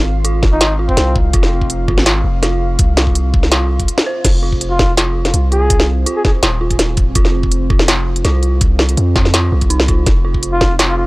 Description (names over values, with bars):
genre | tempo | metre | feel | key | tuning
half-time drum and bass | 165 BPM | 4/4 | half-time | F minor | A4 = 440 Hz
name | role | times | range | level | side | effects
deep dark ambient pad | sustained chords | 0.0-11.1 s | C4 to F5 | -27 LUFS | right 1 dB | chorus, built-in reverb, sidechain pumping
dark detuned synth bell | arpeggios | 0.0-11.1 s | Eb4 to C5 | -24 LUFS | right 3 dB | chorus, analog delay
long sustained 808-style bass | bass | 0.0-11.1 s | Eb1 to F2 | -16 LUFS | equal | tube saturation
metallic inharmonic drone | texture | 0.0-4.3 s | F4 | -30 LUFS | left 1 dB | chorus, built-in reverb
industrial drum kit | drums | 0.2-10.9 s | crash cymbal, hi-hat, snare drum | -16 LUFS | equal | none
electronic kick drum | drums | 0.4-10.7 s | none | -15 LUFS | equal | none
trumpet with bucket mute | melody | 0.5-1.2, 4.7-6.3, 10.5-11.0 s | C4 to Ab4 | -21 LUFS | equal | vintage 12-bit sampler grit, analog delay
room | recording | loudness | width
digital ambience | dry, gritty hardware recording, transformer saturation | -11 LUFS | side -21 dB against mid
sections
0.0-4.2 A section; 4.2-11.1 A section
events
drop 0.0-4.2, 4.2-11.1; break 3.9-4.2; band accent 4.0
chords
0.0 F5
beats
0.25 0.61 0.97 | 1.34 1.70 2.06 2.43 | 2.79 3.16 3.52 3.88 | 4.25 4.61 4.97 5.34 | 5.70 6.07 6.43 6.79 | 7.16 7.52 7.88 8.25 | 8.61 8.97 9.34 9.70 | 10.06 10.43 10.79